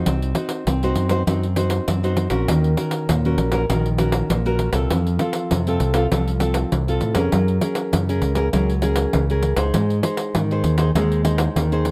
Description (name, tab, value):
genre	samba and choro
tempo	99 BPM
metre	4/4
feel	straight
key	unclear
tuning	A4 = 440 Hz
part	nylon-string guitar	accompaniment	0.0-11.9 s	Bb2 to C5	-24 LUFS	equal	none
part	overdriven fingered electric bass	bass	0.0-11.9 s	Bb1 to A2	-23 LUFS	equal	none
part	pandeiro	percussion	0.1-11.9 s	none	-26 LUFS	equal	none
room	light reverb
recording	close, detailed microphones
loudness	-20 LUFS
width	mono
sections	0.0-11.9 A section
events	none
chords	0.1 Cdim; 2.5 Ebm7; 4.9 F; 7.3 Gbadd9; 9.7 Ab